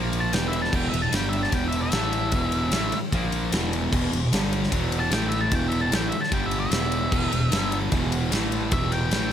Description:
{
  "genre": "blues rock power trio and southern rock",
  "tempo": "150 BPM",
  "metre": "4/4",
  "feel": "straight",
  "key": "E minor",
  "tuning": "A4 = 438 Hz",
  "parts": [
    { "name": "thick fuzz guitar", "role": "riff", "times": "0.0-9.3 s", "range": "E2 to A#3", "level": "-26 LUFS", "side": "equal", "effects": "distortion" },
    { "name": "fuzz fingered electric bass", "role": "bass", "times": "0.0-9.3 s", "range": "E1 to A#1", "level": "-29 LUFS", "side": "equal", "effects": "overdrive" },
    { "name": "big rock drum kit", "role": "drums", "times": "0.1-9.2 s", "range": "crash cymbal, kick drum, ride cymbal, snare drum", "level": "-27 LUFS", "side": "equal", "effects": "none" },
    { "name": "octave-fuzz lead guitar", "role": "melody", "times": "0.2-9.3 s", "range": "E5 to A5", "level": "-29 LUFS", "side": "left 1 dB", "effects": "distortion" }
  ],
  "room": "little or no reverb",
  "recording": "none",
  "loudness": "-22 LUFS",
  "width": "side -10 dB against mid",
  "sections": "0.0-9.3 A section",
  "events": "lead electric guitar solo 0.0-9.3",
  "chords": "0.3 E5; 1.1 G5; 1.5 E5; 1.9 A5; 2.3 E5; 3.1 A#5; 3.5 E5; 4.3 G5; 4.7 E5; 5.1 A5; 5.5 E5; 6.3 G5; 6.7 E5; 7.5 G5; 7.9 E5; 8.3 A5; 8.7 Em",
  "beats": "0.33 | 0.72 1.13 1.53 1.93 | 2.33 2.73 3.12 3.52 | 3.92 4.32 4.72 5.12 | 5.52 5.92 6.32 6.72 | 7.12 7.52 7.92 8.32 | 8.72 9.12"
}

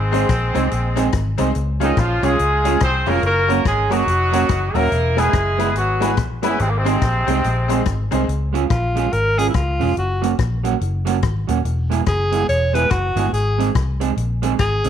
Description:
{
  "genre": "ska",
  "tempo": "143 BPM",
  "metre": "4/4",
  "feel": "swing 60% on 8ths",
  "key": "Db major",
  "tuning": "A4 = 440 Hz",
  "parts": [
    { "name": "clear horn section", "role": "melody", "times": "0.0-7.9 s", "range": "C3 to C5", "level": "-20 LUFS", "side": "equal", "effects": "none" },
    { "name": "vintage muted fingered electric bass", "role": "bass", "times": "0.0-14.9 s", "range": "Eb1 to Db2", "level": "-21 LUFS", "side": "left 1 dB", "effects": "transformer saturation" },
    { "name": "electric guitar at the edge of break-up", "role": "accompaniment", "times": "0.1-14.9 s", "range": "Gb3 to Ab4", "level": "-23 LUFS", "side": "right 12 dB", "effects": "none" },
    { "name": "bright upright piano", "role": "stabs", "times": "0.1-8.2 s", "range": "B3 to Db5", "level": "-25 LUFS", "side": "left 10 dB", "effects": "none" },
    { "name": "swinging big-band drum kit", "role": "drums", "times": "0.1-14.9 s", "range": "hi-hat, kick drum, rim click", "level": "-24 LUFS", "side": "left 4 dB", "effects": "none" },
    { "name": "breathy alto saxophone", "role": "melody", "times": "8.7-14.9 s", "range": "Fb4 to Db5", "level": "-20 LUFS", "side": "left 1 dB", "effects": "none" }
  ],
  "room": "light reverb, studio ambience",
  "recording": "1960s-style stereo with parts hard left and right",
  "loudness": "-16 LUFS",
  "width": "side -9 dB against mid",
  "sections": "0.0-8.3 A section; 8.3-14.9 B section",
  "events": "alto saxophone solo 8.3-14.9",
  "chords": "0.0 Ab; 1.6 Db; 3.2 Gb; 4.9 E; 6.6 Ab; 8.3 Db; 10.0 Gb; 11.6 E; 13.3 Ab",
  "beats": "0.29 0.71 1.13 | 1.55 1.97 2.39 2.81 | 3.23 3.65 4.07 4.49 | 4.92 5.33 5.76 6.18 | 6.60 7.02 7.44 7.86 | 8.28 8.70 9.12 9.54 | 9.96 10.38 10.81 11.23 | 11.65 12.07 12.49 12.91 | 13.33 13.75 14.17 14.59"
}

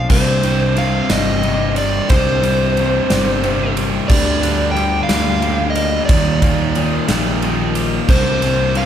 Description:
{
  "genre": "post-rock",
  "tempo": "60 BPM (dotted quarters)",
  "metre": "6/8",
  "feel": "straight",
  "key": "C minor",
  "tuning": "A4 = 440 Hz",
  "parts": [
    { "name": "overdriven slide guitar", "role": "melody", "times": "0.0-8.9 s", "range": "C5 to G5", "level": "-20 LUFS", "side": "equal", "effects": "none" },
    { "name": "twelve-string electric guitar", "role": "arpeggios", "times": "0.0-8.9 s", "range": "C2 to Bb3", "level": "-25 LUFS", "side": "left 1 dB", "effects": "none" },
    { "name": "crunchy overdriven guitar", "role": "riff", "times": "0.0-8.9 s", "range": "C2 to G3", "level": "-22 LUFS", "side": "left 6 dB", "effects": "none" },
    { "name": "overdriven picked electric bass", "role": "bass", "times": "0.0-8.9 s", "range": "G1 to Eb2", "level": "-20 LUFS", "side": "right 1 dB", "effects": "none" },
    { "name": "tight distorted guitar", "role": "riff", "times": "0.1-8.9 s", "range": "C2 to G3", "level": "-23 LUFS", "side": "right 9 dB", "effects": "distortion" },
    { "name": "huge arena drum kit", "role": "drums", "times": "0.1-8.9 s", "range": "crash cymbal, kick drum, ride cymbal, snare drum", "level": "-19 LUFS", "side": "equal", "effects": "none" }
  ],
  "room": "moderate recital hall reverb, RT60 1.7 s",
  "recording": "recorded in a church or concert hall",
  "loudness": "-13 LUFS",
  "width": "side -9 dB against mid",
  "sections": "0.1-8.9 A section",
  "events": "none",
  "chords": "0.1 C5; 4.1 Gm/D; 6.1 Ebmaj7; 8.1 C5",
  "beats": "| 0.10 1.10 | 2.10 3.10 | 4.10 5.10 | 6.10 7.09 | 8.09"
}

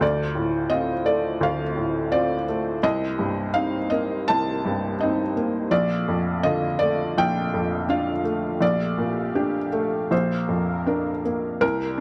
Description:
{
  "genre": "neoclassical piano and strings",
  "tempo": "77-86 BPM",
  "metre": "4/4",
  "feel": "rubato",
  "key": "unclear",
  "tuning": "A4 = 440 Hz",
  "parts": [
    { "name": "felt-muted upright piano", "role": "accompaniment", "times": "0.0-12.0 s", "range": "Bb1 to A5", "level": "-24 LUFS", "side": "equal", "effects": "none" },
    { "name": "warm analog pad", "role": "sustained chords", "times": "0.0-12.0 s", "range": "A3 to F5", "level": "-36 LUFS", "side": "equal", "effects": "chorus" }
  ],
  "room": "wet studio reverb, RT60 0.7 s",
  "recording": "none",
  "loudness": "-24 LUFS",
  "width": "mono",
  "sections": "0.0-11.6 A section",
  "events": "none",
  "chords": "0.0 Dm7; 2.8 Cm7; 5.7 Bbmaj7; 8.6 Gmadd9/Bb; 10.1 Bbadd9",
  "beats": "| 0.01 0.72 1.42 2.13 | 2.83 3.54 4.28 5.00 | 5.71 6.42 7.16 7.89 | 8.61 9.35 10.11 10.88 | 11.63"
}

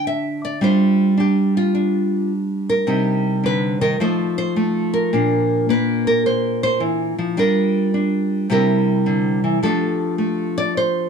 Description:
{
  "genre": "solo jazz",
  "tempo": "106 BPM",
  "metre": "4/4",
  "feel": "swing 67% on 8ths",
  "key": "F major",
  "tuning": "A4 = 440 Hz",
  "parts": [
    { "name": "nylon-string guitar", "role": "solo", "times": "0.0-11.1 s", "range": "Bb2 to E5", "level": "-16 LUFS", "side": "equal", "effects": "none" }
  ],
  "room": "moderate club reverb, RT60 0.9 s",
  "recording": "dark, warm production",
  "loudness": "-16 LUFS",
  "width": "side -6 dB against mid",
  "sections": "0.0-9.6 A section; 9.6-11.1 B section",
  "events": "nylon-string guitar solo 0.0-9.6",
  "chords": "0.0 D5; 0.6 G5; 2.9 Cm7; 4.0 F7; 5.1 Bb; 7.4 Gm7; 8.5 C7; 9.6 F69",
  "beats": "0.04 | 0.60 1.17 1.73 2.30 | 2.86 3.42 3.99 4.55 | 5.12 5.68 6.24 6.80 | 7.37 7.93 8.49 9.05 | 9.62 10.18 10.74"
}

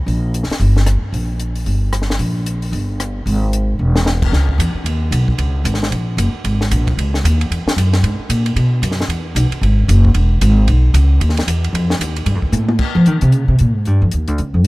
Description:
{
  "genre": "modal jazz",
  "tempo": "226 BPM",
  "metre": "4/4",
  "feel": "swing 60% on 8ths",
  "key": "C# dorian from 4.3 s",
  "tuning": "A4 = 439 Hz",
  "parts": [
    { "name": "upright bass", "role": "bass", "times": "0.0-14.7 s", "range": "E1 to F3", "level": "-14 LUFS", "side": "equal", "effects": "none" },
    { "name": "compact cocktail drum kit", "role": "drums", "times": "0.1-14.7 s", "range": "crash cymbal, hi-hat, kick drum, ride cymbal, rim click, snare drum, toms", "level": "-22 LUFS", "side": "equal", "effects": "none" }
  ],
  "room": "little or no reverb",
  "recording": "none",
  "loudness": "-13 LUFS",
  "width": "side -21 dB against mid",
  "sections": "0.0-4.3 A section; 4.3-12.8 B section; 12.8-14.7 C section",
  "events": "drum fill 3.8, 12.5; upright bass solo 12.8-14.7",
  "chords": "none",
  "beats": "| 0.07 0.34 0.60 0.87 | 1.13 1.40 1.67 1.93 | 2.20 2.47 2.73 3.00 | 3.26 3.53 3.80 4.06 | 4.33 4.59 4.86 5.12 | 5.39 5.66 5.92 6.19 | 6.45 6.71 6.98 7.24 | 7.51 7.77 8.04 8.30 | 8.57 8.83 9.10 9.36 | 9.62 9.89 10.15 10.42 | 10.68 10.94 11.21 11.47 | 11.74 12.00 12.27 12.53 | 12.79 13.06 13.32 13.59 | 13.85 14.12 14.38 14.65"
}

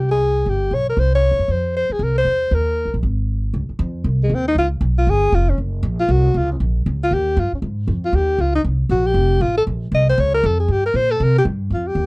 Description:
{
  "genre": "jazz, small-group swing and bop",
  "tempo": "235 BPM",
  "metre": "4/4",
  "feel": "swing 61% on 8ths",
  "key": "unclear",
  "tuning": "A4 = 438 Hz",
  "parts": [
    { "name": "warm alto saxophone", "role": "melody", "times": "0.0-12.1 s", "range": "Ab3 to Eb5", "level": "-18 LUFS", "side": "left 1 dB", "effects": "none" },
    { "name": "upright bass", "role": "bass", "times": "0.0-12.1 s", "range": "F1 to C3", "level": "-18 LUFS", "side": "equal", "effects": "none" }
  ],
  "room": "little or no reverb",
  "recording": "dry, close 1970s-style studio recording",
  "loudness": "-16 LUFS",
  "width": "side -26 dB against mid",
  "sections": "0.0-3.5 A section; 3.5-11.7 B section",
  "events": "none",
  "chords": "0.5 G(b5, no3); 1.0 C; 1.5 F5; 2.5 Eb5; 3.0 N.C.; 3.5 Dbmaj7; 4.6 Db7; 5.6 Gb; 6.6 Bbm; 7.1 Eb; 7.6 Ab5; 8.6 Gmadd11 (rootless); 9.2 F; 9.7 Bbm; 10.7 Gm; 11.2 C5",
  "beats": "0.21 | 0.47 0.72 0.98 1.24 | 1.49 1.75 2.00 2.26 | 2.52 2.77 3.03 3.28 | 3.54 3.79 4.05 4.31 | 4.56 4.82 5.07 5.33 | 5.58 5.84 6.09 6.35 | 6.60 6.86 7.12 7.37 | 7.62 7.88 8.13 8.39 | 8.64 8.90 9.15 9.41 | 9.66 9.92 10.18 10.43 | 10.69 10.94 11.20 11.45 | 11.71 11.96"
}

